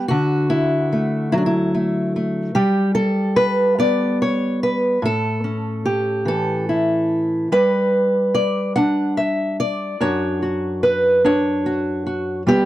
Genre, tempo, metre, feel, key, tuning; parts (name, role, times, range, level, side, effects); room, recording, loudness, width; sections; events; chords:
folk, solo fingerstyle acoustic guitar; 49 BPM (dotted quarters); 6/8; straight; A4 = 441 Hz
fingerpicked old ladder-braced acoustic guitar; solo; 0.0-12.7 s; F#2 to F#5; -17 LUFS; equal
light reverb; dry, close 1970s-style studio recording; -17 LUFS; side -14 dB against mid
0.0-12.7 A section
0.1 Dadd9; 2.5 G; 5.0 A; 7.5 G; 10.0 Bmadd9/F#